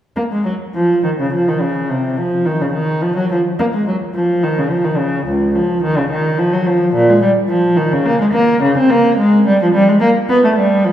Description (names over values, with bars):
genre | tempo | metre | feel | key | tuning
classical, baroque-style suite movement for unaccompanied cello | 107 BPM | 3/4 | rubato | unclear | A4 = 440 Hz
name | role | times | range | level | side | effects
warm cello | solo | 0.2-10.9 s | Db2 to C4 | -12 LUFS | equal | none
room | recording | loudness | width
wet concert hall reverb, RT60 2.4 s | heard from further back in the room | -12 LUFS | side -11 dB against mid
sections
0.2-10.9 A section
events
none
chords
none